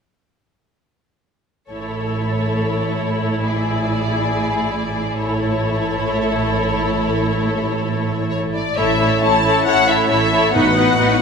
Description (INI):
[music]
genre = classical, dramatic, fast romantic movement for symphony orchestra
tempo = 136 BPM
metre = 4/4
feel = rubato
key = A major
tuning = A4 = 440 Hz
[part]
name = rich symphonic violin section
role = melody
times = 1.7-11.2 s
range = C#5 to A5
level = -22 LUFS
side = left 4 dB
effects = none
[part]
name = rich symphonic violin section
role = second line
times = 1.7-11.2 s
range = F#4 to C#5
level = -22 LUFS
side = left 3 dB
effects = none
[part]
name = clear symphonic viola section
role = accompaniment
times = 1.7-11.2 s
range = B3 to E4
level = -22 LUFS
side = right 1 dB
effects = none
[part]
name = rich symphonic cello section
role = bass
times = 1.7-11.2 s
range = A2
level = -24 LUFS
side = right 2 dB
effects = none
[part]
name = rich symphonic double bass section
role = bass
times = 1.7-11.2 s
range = A1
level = -25 LUFS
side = right 3 dB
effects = none
[part]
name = dark French horn section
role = sustained chords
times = 8.8-11.2 s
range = B3 to E4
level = -24 LUFS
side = left 2 dB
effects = none
[part]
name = timpani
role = percussion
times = 8.8-11.2 s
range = A2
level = -30 LUFS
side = equal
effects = none
[sound]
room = wet concert hall reverb, RT60 2.2 s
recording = minimal, uncompressed stereo recording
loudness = -16 LUFS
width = side -6 dB against mid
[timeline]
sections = 1.7-8.8 A section; 8.8-11.2 B section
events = none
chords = 1.7 A; 10.5 B7/A